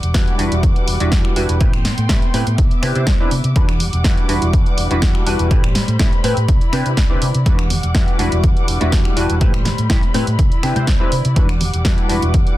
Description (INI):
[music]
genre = filtered disco house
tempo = 123 BPM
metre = 4/4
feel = straight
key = E minor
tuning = A4 = 440 Hz
[part]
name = dark chamber string section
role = sustained chords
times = 0.0-12.6 s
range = G3 to D6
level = -27 LUFS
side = left 1 dB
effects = vintage 12-bit sampler grit, sidechain pumping, low-pass filter
[part]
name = hollow-body short-scale fingered electric bass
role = bass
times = 0.0-12.4 s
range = E1 to C3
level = -19 LUFS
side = equal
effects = tube saturation, sidechain pumping, low-pass filter
[part]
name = punchy analog drum machine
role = drums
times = 0.0-12.6 s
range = finger snaps, hi-hat, snare drum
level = -24 LUFS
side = equal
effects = sidechain pumping on hats
[part]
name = funky polysynth comp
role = accompaniment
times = 0.1-12.6 s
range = G3 to C5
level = -22 LUFS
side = equal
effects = chorus, phaser, cassette tape, sidechain pumping, low-pass filter
[part]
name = electronic kick drum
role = drums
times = 0.1-12.4 s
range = none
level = -16 LUFS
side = equal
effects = none
[part]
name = tube shaker and congas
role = percussion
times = 7.5-12.6 s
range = none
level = -28 LUFS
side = right 3 dB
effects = none
[sound]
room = digital ambience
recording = dense, heavily limited modern master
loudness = -14 LUFS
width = side -15 dB against mid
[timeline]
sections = 0.0-12.6 A section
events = none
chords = 0.0 Em9; 1.6 Am9; 2.6 Cmaj9; 3.6 Em9; 5.5 Am9; 6.5 Cmaj9; 7.5 Em9; 9.4 Am9; 10.4 Cmaj9; 11.4 Em9